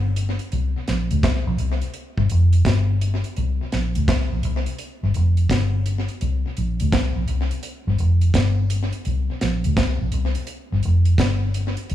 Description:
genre	roots reggae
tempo	84 BPM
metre	4/4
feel	swing 64% on 16ths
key	unclear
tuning	A4 = 440 Hz
part	vintage muted fingered electric bass	bass	0.0-11.9 s	F1 to D2	-19 LUFS	left 1 dB	none
part	deep reggae drum kit	drums	0.2-11.9 s	hi-hat, kick drum, snare drum	-25 LUFS	right 1 dB	tape echo
room	little or no reverb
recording	studio reverb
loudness	-19 LUFS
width	side -12 dB against mid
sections	0.0-11.9 A section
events	none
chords	none

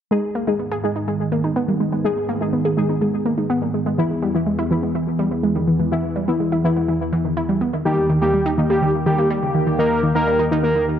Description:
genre	techno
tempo	124 BPM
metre	4/4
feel	straight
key	G# harmonic minor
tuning	A4 = 440 Hz
part	sweeping resonant pad	sustained chords	0.1-11.0 s	D#2 to G#4	-24 LUFS	right 1 dB	chorus
part	wide unison pluck	arpeggios	0.1-10.9 s	C#3 to G#4	-21 LUFS	equal	cassette tape, analog delay
part	synth brass stab	stabs	0.1-11.0 s	D#3 to G#4	-24 LUFS	left 2 dB	chorus, analog delay
part	fat analog lead	melody	7.9-10.9 s	G4 to A#4	-19 LUFS	equal	analog delay
room	moderate spring reverb, RT60 1.9 s, digital ambience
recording	echo-heavy mix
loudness	-17 LUFS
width	side -9 dB against mid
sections	0.1-11.0 A section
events	none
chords	0.1 G#m; 4.0 E; 7.9 D#

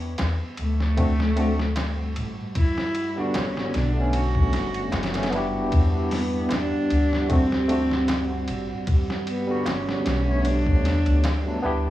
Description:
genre	trip hop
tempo	76 BPM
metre	4/4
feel	swing 54% on 16ths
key	E dorian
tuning	A4 = 439 Hz
part	dark cello	melody	0.0-11.6 s	A3 to F#4	-27 LUFS	equal	cassette tape, tape echo
part	deep dark ambient pad	sustained chords	0.4-11.9 s	G3 to F#5	-32 LUFS	right 1 dB	chorus, built-in reverb, cassette tape
part	upright bass	bass	0.0-11.9 s	F#1 to E2	-25 LUFS	equal	none
part	trip hop sampler-style drum kit	drums	0.2-11.4 s	hi-hat, kick drum, ride cymbal, snare drum	-27 LUFS	equal	vintage 12-bit sampler grit, cassette tape
part	darbuka	percussion	0.2-11.4 s	none	-37 LUFS	right 2 dB	none
part	barky tine electric piano	accompaniment	1.0-11.9 s	D3 to C#5	-28 LUFS	equal	overdrive, tremolo, cassette tape, tape echo
room	light reverb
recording	home recording on cassette, vinyl crackle, small room ambience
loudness	-21 LUFS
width	side -14 dB against mid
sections	0.0-11.9 A section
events	none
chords	0.0 Em7; 1.0 D7; 2.6 Gmaj7; 4.1 Bm9; 5.7 Em7; 7.3 D7; 8.9 Gmaj7; 10.5 Bm9; 11.2 D6

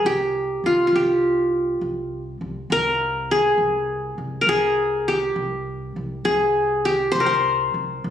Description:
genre	Arabic maqam ensemble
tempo	68 BPM (dotted quarters)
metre	6/8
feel	straight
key	C maqam hijaz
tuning	A4 = 441 Hz
part	qanun	melody	0.0-8.1 s	F4 to C5	-19 LUFS	left 1 dB	none
part	upright bass	bass	0.0-8.1 s	C2	-32 LUFS	equal	none
room	light reverb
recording	recorded on a phone in the room, studio reverb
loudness	-19 LUFS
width	side -10 dB against mid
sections	0.0-8.1 A section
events	none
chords	none

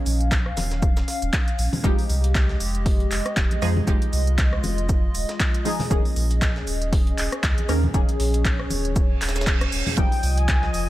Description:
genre	deep house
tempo	118 BPM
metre	4/4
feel	swing 56% on 16ths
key	unclear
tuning	A4 = 440 Hz
part	hollow soft pad	sustained chords	0.0-10.9 s	F3 to F5	-30 LUFS	equal	chorus, sidechain pumping
part	filtered dub chord stab	stabs	0.0-10.9 s	Eb3 to Bb4	-29 LUFS	right 1 dB	phaser, lush chorus, sidechain pumping, tape echo
part	warm sub bass	bass	0.1-10.9 s	Eb1 to F2	-24 LUFS	equal	sidechain pumping
part	breakbeat sampler-style drum kit	drums	0.1-10.9 s	hi-hat, shaker, snare drum	-36 LUFS	equal	high-pass filter on perc, high-pass filter on hats, high-pass filter on snare
part	deep house drum kit	drums	0.1-10.9 s	handclaps, hi-hat, rim click	-29 LUFS	equal	none
part	electronic kick drum	drums	0.3-10.6 s	none	-22 LUFS	equal	none
part	congas	percussion	0.6-10.0 s	none	-31 LUFS	left 1 dB	none
part	reverse cymbal	sound effects	9.1-10.0 s	none	-32 LUFS	right 7 dB	none
part	warm velvety synth lead	melody	10.0-10.9 s	G5 to Ab5	-29 LUFS	left 2 dB	chorus, tape echo
part	soft string machine	texture	10.2-10.9 s	Eb6	-36 LUFS	right 1 dB	ensemble chorus
room	little or no reverb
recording	none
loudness	-19 LUFS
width	side -15 dB against mid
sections	0.0-10.9 A section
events	reverse cymbal 9.1-10.0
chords	0.0 Eb7sus4; 1.8 Fm9; 5.9 Eb7sus4; 10.0 Fm9

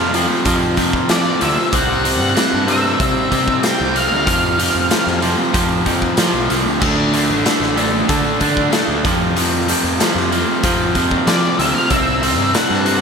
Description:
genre	classic rock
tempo	94 BPM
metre	4/4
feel	straight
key	unclear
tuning	A4 = 439 Hz
part	octave-fuzz lead guitar	melody	0.0-5.2, 11.3-13.0 s	D5 to G5	-20 LUFS	left 1 dB	distortion, slapback echo
part	overdriven electric guitar	riff	0.0-13.0 s	F2 to D4	-17 LUFS	right 1 dB	slapback echo
part	fuzz picked electric bass	bass	0.0-13.0 s	A1 to F3	-22 LUFS	equal	overdrive
part	raw garage drum kit	drums	0.1-13.0 s	crash cymbal, hi-hat, kick drum, snare drum	-19 LUFS	left 1 dB	none
room	moderate scoring stage reverb, RT60 2.0 s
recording	big arena sound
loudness	-14 LUFS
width	side -6 dB against mid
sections	0.0-13.0 A section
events	none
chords	0.0 F5; 1.7 C; 4.3 F5; 6.8 D5; 9.0 F5; 11.9 C

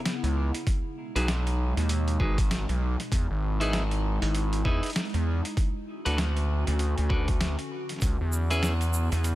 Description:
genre	glitch hop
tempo	98 BPM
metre	4/4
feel	swing 59% on 16ths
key	unclear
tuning	A4 = 439 Hz
part	warbly tape-like pad	sustained chords	0.0-9.3 s	B2 to F#4	-35 LUFS	equal	chorus, built-in reverb, vintage 12-bit sampler grit, sidechain pumping
part	boom bap sampler-style drum kit	drums	0.1-9.3 s	hi-hat, snare drum	-34 LUFS	equal	overdrive
part	gritty driven synth bass	bass	0.2-9.3 s	G#1 to E2	-26 LUFS	equal	distortion
part	electronic kick drum	drums	0.7-8.2 s	none	-27 LUFS	equal	overdrive
part	clean electric guitar	stabs	1.2-8.7 s	C#4 to B4	-34 LUFS	equal	sidechain pumping, low-pass filter, dub echo
part	tube shaker	percussion	8.0-9.3 s	none	-39 LUFS	right 2 dB	none
room	little or no reverb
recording	none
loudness	-25 LUFS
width	side -16 dB against mid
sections	0.0-9.3 A section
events	none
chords	0.0 C#m7; 0.7 B6; 3.1 Emaj7; 5.6 Dmaj7; 8.0 C#m7

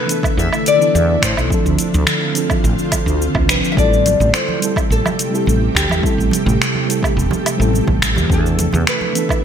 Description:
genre	sunset chillout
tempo	106 BPM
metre	4/4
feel	straight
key	A minor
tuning	A4 = 440 Hz
part	nylon-string guitar	melody	0.0-9.4 s	G4 to E5	-20 LUFS	left 4 dB	ping-pong delay
part	mellow FM electric piano	accompaniment	0.0-9.4 s	E3 to B4	-21 LUFS	right 1 dB	chorus, auto-pan, ping-pong delay
part	ethereal airy pad	sustained chords	0.0-9.4 s	C3 to G4	-23 LUFS	right 1 dB	ensemble chorus, built-in reverb
part	deep house drum kit	drums	0.1-9.4 s	cabasa, finger snaps, hi-hat, woodblock	-20 LUFS	right 1 dB	overdrive, gated reverb
part	electronic kick drum	drums	0.2-9.4 s	none	-20 LUFS	equal	overdrive
part	woody fretless electric bass	bass	0.4-8.8 s	E1 to A2	-17 LUFS	equal	none
part	congas	percussion	4.1-9.1 s	none	-26 LUFS	right 3 dB	none
room	moderate lush hall reverb, RT60 1.6 s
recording	bright 1980s-style digital production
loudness	-13 LUFS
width	side -8 dB against mid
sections	0.0-9.4 A section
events	none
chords	0.0 E7sus4; 1.5 Dm7; 3.8 Am7; 8.3 E7sus4

